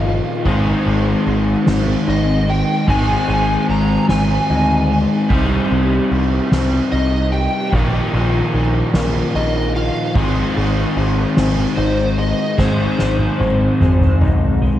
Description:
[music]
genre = post-rock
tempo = 50 BPM (dotted quarters)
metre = 6/8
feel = straight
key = unclear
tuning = A4 = 440 Hz
[part]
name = overdriven slide guitar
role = melody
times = 0.0-14.2 s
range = C5 to Bb5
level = -24 LUFS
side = equal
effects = ensemble chorus, analog delay
[part]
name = electric guitar through a small old amp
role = arpeggios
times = 0.0-14.8 s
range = Ab2 to Eb4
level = -23 LUFS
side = left 2 dB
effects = ensemble chorus, analog delay
[part]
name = crunchy overdriven guitar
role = riff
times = 0.0-14.8 s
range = Ab2 to Eb4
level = -18 LUFS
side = left 1 dB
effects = analog chorus
[part]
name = growling picked electric bass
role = bass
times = 0.0-14.8 s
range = G1 to D2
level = -20 LUFS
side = equal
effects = overdrive
[part]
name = soft-mallet drum kit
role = drums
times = 0.0-14.8 s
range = crash cymbal, kick drum, ride cymbal, snare drum, toms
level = -22 LUFS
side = equal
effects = vintage 12-bit sampler grit
[sound]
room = moderate cathedral reverb, RT60 4.3 s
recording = dreamy mix soaked in reverb, vinyl crackle, faint mains hum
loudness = -14 LUFS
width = side -12 dB against mid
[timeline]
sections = 0.0-14.8 A section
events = drum fill 12.6-14.8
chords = 0.5 Ab; 5.3 Cm; 7.7 Bbsus4; 10.2 Ab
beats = | 0.46 1.67 | 2.88 4.09 | 5.31 6.52 | 7.73 8.94 | 10.16 11.37 | 12.59 13.81

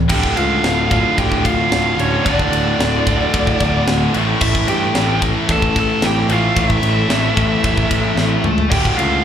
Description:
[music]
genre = heavy metal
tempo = 111 BPM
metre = 4/4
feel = straight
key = D harmonic minor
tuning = A4 = 440 Hz
[part]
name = tight distorted guitar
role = riff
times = 0.0-9.2 s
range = D2 to A3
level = -21 LUFS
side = left 11 dB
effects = distortion, slapback echo
[part]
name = tight distorted guitar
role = riff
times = 0.0-9.2 s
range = D2 to A3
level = -22 LUFS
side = right 10 dB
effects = distortion, slapback echo
[part]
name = high-gain lead guitar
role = melody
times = 0.1-9.2 s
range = C#5 to A5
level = -20 LUFS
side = right 2 dB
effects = distortion, slapback echo, digital delay
[part]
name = growling alto saxophone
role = second line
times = 0.1-9.2 s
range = C#4 to A4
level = -27 LUFS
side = right 2 dB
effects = none
[part]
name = bright symphonic string section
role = sustained chords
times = 0.1-9.2 s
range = A3 to F5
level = -30 LUFS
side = left 2 dB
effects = none
[part]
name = fuzz picked electric bass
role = bass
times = 0.1-9.2 s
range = D1 to G2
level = -20 LUFS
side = equal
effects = overdrive
[part]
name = tight metal drum kit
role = drums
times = 0.1-9.1 s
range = crash cymbal, kick drum, ride cymbal, snare drum, toms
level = -20 LUFS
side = left 1 dB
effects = none
[sound]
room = little or no reverb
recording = live gig heard through the venue's PA, club reverb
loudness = -13 LUFS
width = side -9 dB against mid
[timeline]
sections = 0.1-9.2 A section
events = drum fill 8.2-8.7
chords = 0.1 Dm; 4.1 A; 8.7 Dm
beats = | 0.10 0.64 1.18 1.72 | 2.25 2.79 3.33 3.87 | 4.41 4.95 5.49 6.03 | 6.57 7.11 7.64 8.18 | 8.72

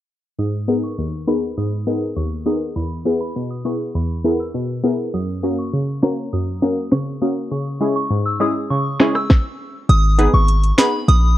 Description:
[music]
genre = dancehall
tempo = 101 BPM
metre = 4/4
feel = straight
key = G# minor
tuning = A4 = 440 Hz
[part]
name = soft synth bell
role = melody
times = 0.4-11.4 s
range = A#5 to E6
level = -25 LUFS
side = equal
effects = chorus, phaser
[part]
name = glassy wavetable pluck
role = accompaniment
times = 0.4-10.9 s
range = D#2 to C#5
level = -20 LUFS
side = left 1 dB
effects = chorus
[part]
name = island pop drum kit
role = drums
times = 6.0-11.2 s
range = finger snaps, hi-hat, kick drum, rim click, snare drum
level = -16 LUFS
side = equal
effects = overdrive
[part]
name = warm 808-style bass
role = bass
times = 9.9-11.4 s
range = G#1 to A#1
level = -13 LUFS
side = equal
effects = none
[sound]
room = little or no reverb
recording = worn, warbling old tape, cassette tape, warbly pitch drift, low-pass filter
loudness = -17 LUFS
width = side -14 dB against mid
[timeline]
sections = 0.4-9.9 A section; 9.9-11.4 B section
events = filter sweep 0.4-9.9; kick muted 9.9-11.4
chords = 0.4 G#madd9; 2.8 E; 5.1 F#; 7.5 C#m; 9.9 G#m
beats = | 0.39 0.98 1.57 2.17 | 2.76 3.36 3.95 4.54 | 5.14 5.73 6.33 6.92 | 7.51 8.11 8.70 9.30 | 9.89 10.48 11.08

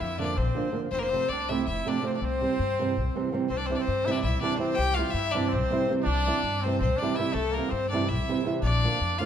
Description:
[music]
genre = balkan folk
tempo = 327 BPM (eighths)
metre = 7/8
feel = straight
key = C mixolydian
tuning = A4 = 440 Hz
[part]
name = bright violin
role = melody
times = 0.0-9.3 s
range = A4 to G5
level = -29 LUFS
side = left 3 dB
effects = none
[part]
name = warm trumpet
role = second line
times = 0.0-9.3 s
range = A3 to G4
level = -33 LUFS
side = right 3 dB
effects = none
[part]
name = upright bass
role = bass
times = 0.0-9.3 s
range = F1 to G2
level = -30 LUFS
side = left 2 dB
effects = none
[part]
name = flamenco guitar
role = accompaniment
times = 0.2-9.3 s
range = C3 to F4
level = -30 LUFS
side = right 4 dB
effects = none
[sound]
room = moderate recital hall reverb, RT60 1.6 s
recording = dark, warm production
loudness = -24 LUFS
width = side -9 dB against mid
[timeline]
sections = 0.0-3.5 A section; 3.5-9.3 A section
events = none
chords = 0.0 Bb; 0.9 F; 2.2 C; 8.6 Bb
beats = 0.17 0.36 0.54 0.73 | 0.91 1.10 1.28 1.47 1.65 1.84 2.02 | 2.21 2.39 2.58 2.76 2.95 3.13 3.31 | 3.50 3.68 3.87 4.05 4.24 4.42 4.60 | 4.79 4.97 5.15 5.34 5.52 5.70 5.89 | 6.07 6.25 6.44 6.62 6.80 6.99 7.17 | 7.35 7.54 7.72 7.90 8.09 8.27 8.45 | 8.63 8.82 9.00 9.18

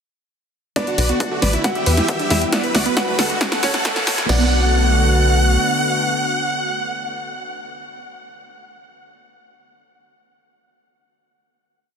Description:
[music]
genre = uplifting trance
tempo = 136 BPM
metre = 4/4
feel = straight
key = B minor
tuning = A4 = 440 Hz
[part]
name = big supersaw lead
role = melody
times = 0.8-7.5 s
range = E4 to F#5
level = -22 LUFS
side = right 1 dB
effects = sidechain pumping, dub echo
[part]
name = clear grand piano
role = second line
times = 0.8-7.5 s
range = C#4 to F#5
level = -27 LUFS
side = equal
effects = ping-pong delay
[part]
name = wide unison pluck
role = second line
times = 0.8-7.5 s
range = E4 to F#5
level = -34 LUFS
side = equal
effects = none
[part]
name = lush unison pad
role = sustained chords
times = 0.8-7.5 s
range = D3 to G4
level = -25 LUFS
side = left 1 dB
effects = chorus, sidechain pumping
[part]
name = analog pluck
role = arpeggios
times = 0.8-4.5 s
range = E3 to E5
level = -28 LUFS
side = right 4 dB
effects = none
[part]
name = punchy analog drum machine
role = drums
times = 0.8-4.4 s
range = crash cymbal, kick drum, snare drum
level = -26 LUFS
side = equal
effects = overdrive, high-pass filter on kick, high-pass filter on snare, high-pass filter on cymbals
[part]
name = punchy analog drum machine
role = drums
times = 0.8-4.3 s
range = hi-hat, snare drum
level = -23 LUFS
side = left 1 dB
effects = overdrive
[part]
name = riser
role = sound effects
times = 1.8-4.3 s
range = none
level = -30 LUFS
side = right 1 dB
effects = none
[part]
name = tight sequencer bass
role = bass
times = 1.0-5.6 s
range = F#1 to E2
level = -18 LUFS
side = equal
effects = sidechain pumping
[sound]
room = moderate huge ambient reverb, RT60 6.2 s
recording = dense, heavily limited modern master, high-pass filter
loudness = -16 LUFS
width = side -7 dB against mid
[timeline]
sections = 0.8-4.3 build; 4.3-7.8 final chord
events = build-up 0.8-4.3; drum fill 0.8-4.3; filter sweep 0.8-4.3; riser 1.8-4.3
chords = 0.8 Bm7; 1.6 Em; 2.5 Bm7/D; 3.4 F#m7; 4.3 Bm7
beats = | 0.76 1.20 1.64 2.08 | 2.53 2.97 3.41 3.85 | 4.29 4.73 5.17 5.62 | 6.06 6.50 6.94 7.38

